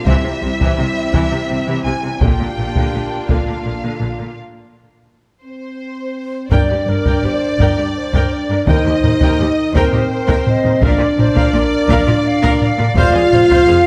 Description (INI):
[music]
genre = cinematic, epic orchestral film score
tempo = 56 BPM (dotted quarters)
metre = 6/8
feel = straight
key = G minor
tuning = A4 = 440 Hz
[part]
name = rich symphonic violin section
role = melody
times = 0.0-13.9 s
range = C5 to Ab5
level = -29 LUFS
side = equal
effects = none
[part]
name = warm symphonic violin section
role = second line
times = 0.0-13.9 s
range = C4 to F5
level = -27 LUFS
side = equal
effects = none
[part]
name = rich symphonic viola section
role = accompaniment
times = 0.0-13.7 s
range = C3 to G5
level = -26 LUFS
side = equal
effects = none
[part]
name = dark French horn section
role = sustained chords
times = 0.0-13.9 s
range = C4 to G4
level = -20 LUFS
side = equal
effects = none
[part]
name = clear symphonic cello section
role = bass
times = 0.1-13.7 s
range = Eb2 to C3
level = -25 LUFS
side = equal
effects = none
[part]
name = rich symphonic double bass section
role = bass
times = 0.1-13.7 s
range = F1 to Eb2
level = -24 LUFS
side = equal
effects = none
[part]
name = solo taiko drums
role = drums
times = 0.1-13.9 s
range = none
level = -20 LUFS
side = equal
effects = none
[part]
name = hollow concert flute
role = second line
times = 6.5-13.9 s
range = Bb4 to F5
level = -25 LUFS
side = equal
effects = none
[sound]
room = moderate scoring stage reverb, RT60 1.9 s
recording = close, detailed microphones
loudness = -15 LUFS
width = mono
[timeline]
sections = 0.0-6.5 A section; 6.5-13.9 B section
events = break 4.4-6.5; drum fill 6.0-6.5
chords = 0.1 C; 2.2 Bb; 4.4 N.C.; 6.5 Gm; 8.7 Eb; 10.8 Bb; 13.0 Fm